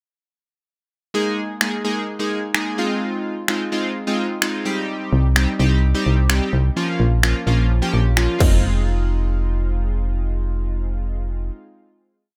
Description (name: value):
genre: dance-pop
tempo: 128 BPM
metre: 4/4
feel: straight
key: F minor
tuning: A4 = 440 Hz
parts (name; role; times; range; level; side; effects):
- chorused retro synth keys; accompaniment; 1.1-11.5 s; F3 to Ab4; -25 LUFS; equal; sidechain pumping
- industrial drum kit; drums; 1.6-8.5 s; crash cymbal, finger snaps, kick drum; -22 LUFS; equal; distortion
- solid FM bass; bass; 5.1-11.5 s; F1 to C2; -20 LUFS; equal; sidechain pumping
room: digital ambience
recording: none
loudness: -20 LUFS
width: mono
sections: 1.1-8.6 verse; 8.6-12.4 final hit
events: none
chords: 1.1 Ebsus4; 2.8 Fm7; 4.7 Cm; 6.8 Bbm; 8.4 Fm7